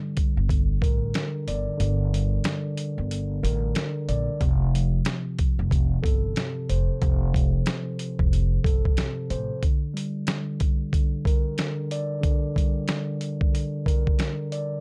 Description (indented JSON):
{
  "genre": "hip hop, boom-bap hip-hop",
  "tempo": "92 BPM",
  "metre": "4/4",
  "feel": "swing 61% on 16ths",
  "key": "F major",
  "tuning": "A4 = 440 Hz",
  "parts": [
    { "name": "mellow tine electric piano", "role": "accompaniment", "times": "0.0-14.8 s", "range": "C3 to D5", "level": "-31 LUFS", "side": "equal", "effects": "cassette tape, high-pass filter, low-pass filter" },
    { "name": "dusty soul sampler-style drum kit", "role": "drums", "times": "0.2-14.7 s", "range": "hi-hat, kick drum, snare drum", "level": "-26 LUFS", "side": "equal", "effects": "none" },
    { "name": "upright bass", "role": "bass", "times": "0.4-9.5 s", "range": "F1 to Bb1", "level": "-27 LUFS", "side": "equal", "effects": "none" }
  ],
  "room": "little or no reverb",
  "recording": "dark, warm production",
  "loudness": "-25 LUFS",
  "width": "mono",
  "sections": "0.0-4.4 A section; 4.4-14.8 A section",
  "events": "kick muted 1.8-4.4",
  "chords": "0.0 Gm; 4.4 F; 9.6 Gm"
}